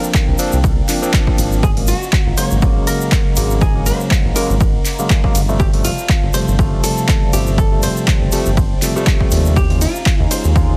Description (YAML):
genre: deep house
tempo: 121 BPM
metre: 4/4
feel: swing 55% on 16ths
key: unclear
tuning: A4 = 440 Hz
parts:
  - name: vintage hollow-body jazz guitar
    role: melody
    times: 0.0-10.8 s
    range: F4 to Db5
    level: -28 LUFS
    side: equal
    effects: digital delay
  - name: warbly tape-like pad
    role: sustained chords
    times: 0.0-10.8 s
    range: Bb3 to Bb5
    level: -33 LUFS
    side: equal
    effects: chorus, built-in reverb, sidechain pumping
  - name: overdriven tine electric piano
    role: stabs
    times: 0.0-10.8 s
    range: C3 to F4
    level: -23 LUFS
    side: equal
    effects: phaser, sidechain pumping, delay
  - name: egg shaker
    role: percussion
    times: 0.0-10.7 s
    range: none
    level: -30 LUFS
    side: equal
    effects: none
  - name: downlifter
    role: sound effects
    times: 0.0-1.6 s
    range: none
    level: barely audible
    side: none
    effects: none
  - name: electronic kick drum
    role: drums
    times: 0.1-10.7 s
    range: none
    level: -18 LUFS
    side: equal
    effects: overdrive
  - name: punchy analog drum machine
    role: drums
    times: 0.1-10.7 s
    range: handclaps, hi-hat, ride cymbal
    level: -26 LUFS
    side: equal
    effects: overdrive
  - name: round analog bass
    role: bass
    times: 0.3-10.7 s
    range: G1 to Eb2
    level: -19 LUFS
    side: equal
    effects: sidechain pumping
room: digital ambience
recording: dense, heavily limited modern master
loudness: -15 LUFS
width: mono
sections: 0.0-10.8 A section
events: none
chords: 0.0 C9sus4; 1.6 Ab9sus4; 5.6 G9sus4; 9.6 Eb9sus4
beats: 0.14 0.64 1.14 | 1.63 2.13 2.62 3.12 | 3.62 4.11 4.61 5.10 | 5.60 6.09 6.59 7.09 | 7.58 8.08 8.57 9.07 | 9.56 10.06 10.56